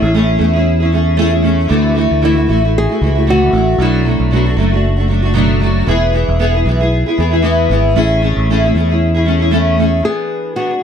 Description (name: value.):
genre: acoustic pop.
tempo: 115 BPM.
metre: 4/4.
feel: swing 55% on 16ths.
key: E mixolydian.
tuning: A4 = 439 Hz.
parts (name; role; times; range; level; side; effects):
nylon-string guitar; melody; 0.0-5.3, 10.0-10.8 s; E4 to G#4; -19 LUFS; left 1 dB; none.
fingerpicked steel-string acoustic guitar; accompaniment; 0.0-10.8 s; B2 to G#4; -14 LUFS; equal; double-tracked left and right.
fingered electric bass; bass; 0.0-10.0 s; E1 to E2; -14 LUFS; equal; none.
room: light reverb.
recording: none.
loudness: -11 LUFS.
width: side -8 dB against mid.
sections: 0.0-1.7 A section; 1.7-10.0 B section.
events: none.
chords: 0.0 Amaj7; 1.7 Dadd9; 3.8 Bm7; 5.9 E; 8.0 Amaj7; 10.0 E7.